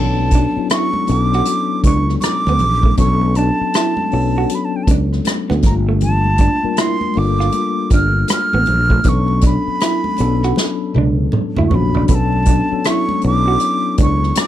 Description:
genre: R&B, neo-soul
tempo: 79 BPM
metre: 4/4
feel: swing 62% on 16ths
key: B minor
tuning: A4 = 441 Hz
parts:
  - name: silver concert flute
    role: melody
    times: 0.0-14.5 s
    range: G5 to F6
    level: -20 LUFS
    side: right 2 dB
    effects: none
  - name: mellow tine electric piano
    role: accompaniment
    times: 0.0-14.5 s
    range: F#3 to Bb4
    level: -21 LUFS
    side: left 8 dB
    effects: medium stereo tremolo
  - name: fretless electric bass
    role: bass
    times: 0.0-14.3 s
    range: G1 to D2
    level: -17 LUFS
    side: equal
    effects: none
  - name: congas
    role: percussion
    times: 0.2-14.5 s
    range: none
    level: -27 LUFS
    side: right 5 dB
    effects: none
  - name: unplugged drum kit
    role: drums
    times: 0.3-14.5 s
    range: hi-hat, kick drum, rim click, snare drum, toms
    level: -17 LUFS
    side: equal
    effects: none
  - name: electric guitar through a small old amp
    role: second line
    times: 0.4-14.2 s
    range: A3 to F#4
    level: -22 LUFS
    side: right 5 dB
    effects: none
room: little or no reverb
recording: none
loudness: -13 LUFS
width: side -12 dB against mid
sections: 0.0-12.1 A section; 12.1-14.5 A section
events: drum fill 10.6-12.1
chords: 0.0 Bm9; 5.6 Gm9; 9.1 Bm9

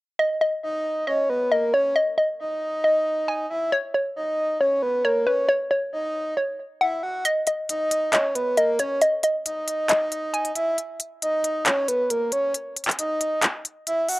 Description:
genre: hip hop, trap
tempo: 136 BPM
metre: 4/4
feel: half-time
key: unclear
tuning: A4 = 440 Hz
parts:
  - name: hollow square pluck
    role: melody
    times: 0.2-10.8 s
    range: B4 to G#5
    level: -22 LUFS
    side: equal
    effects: chorus, low-pass filter, cassette tape
  - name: breathy flute-like synth lead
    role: second line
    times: 0.6-14.2 s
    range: A#4 to F#5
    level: -24 LUFS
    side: equal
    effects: chorus, cassette tape, analog delay
  - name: trap drum kit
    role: drums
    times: 7.2-14.2 s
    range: handclaps, hi-hat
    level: -24 LUFS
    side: equal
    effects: none
room: light reverb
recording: home recording on cassette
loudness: -21 LUFS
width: side -19 dB against mid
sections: 0.2-7.3 A section; 7.3-14.2 B section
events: kick muted 7.3-14.2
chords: none

